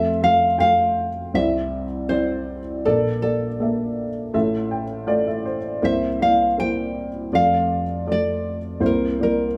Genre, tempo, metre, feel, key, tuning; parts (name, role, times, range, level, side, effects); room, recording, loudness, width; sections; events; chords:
acoustic folk-pop ballad; 80 BPM; 4/4; straight; F major; A4 = 443 Hz
nylon-string guitar; melody; 0.0-9.6 s; A4 to G5; -23 LUFS; equal; plate reverb
dark upright piano; accompaniment; 0.0-9.6 s; F1 to G5; -24 LUFS; equal
wet studio reverb, RT60 0.6 s; heard from further back in the room; -21 LUFS; mono
0.0-9.6 A section
0.0 Fmaj7; 1.3 Cadd9; 2.8 Bbmaj7; 4.3 Fmaj7/A; 5.8 C7; 7.3 F6; 8.8 C7